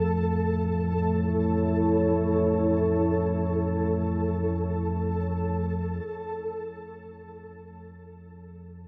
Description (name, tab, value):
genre	dark ambient drone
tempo	free time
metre	none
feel	none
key	unclear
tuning	A4 = 440 Hz
part	deep dark ambient pad	sustained chords	0.0-6.1 s	A3 to A5	-30 LUFS	equal	chorus, built-in reverb
part	deep rumbling drone	drone	0.0-8.9 s	F2 to F3	-31 LUFS	equal	built-in reverb
part	flickering grainy texture	texture	0.0-6.1 s	A4	-36 LUFS	equal	built-in reverb
room	wet huge ambient reverb, RT60 8.2 s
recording	none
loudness	-26 LUFS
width	mono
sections	0.0-6.0 A section; 6.0-8.9 B section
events	none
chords	0.0 A; 6.0 N.C.